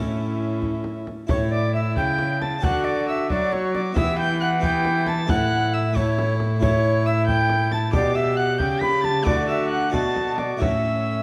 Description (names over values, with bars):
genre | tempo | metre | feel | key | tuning
classical, renaissance-style consort dance | 90 BPM (dotted quarters) | 6/8 | straight | unclear | A4 = 441 Hz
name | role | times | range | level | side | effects
dark violin | melody | 0.0-11.2 s | E5 to B6 | -31 LUFS | equal | none
mellow tenor recorder | second line | 0.0-11.2 s | E4 to B5 | -28 LUFS | equal | none
harpsichord | accompaniment | 0.0-11.2 s | A2 to D5 | -32 LUFS | equal | none
warm viola | accompaniment | 0.0-11.2 s | C#4 to G4 | -31 LUFS | equal | none
rich cello | bass | 0.0-11.2 s | A2 to F#3 | -28 LUFS | equal | none
frame drum | percussion | 0.6-10.8 s | none | -30 LUFS | equal | none
room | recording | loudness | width
wet recital hall reverb, RT60 1.5 s | dark, warm production | -22 LUFS | mono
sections
0.0-1.3 A section; 1.3-11.2 A section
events
none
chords
0.0 A; 2.6 D; 4.0 Em; 5.3 A; 7.9 G/B; 9.3 D; 10.6 A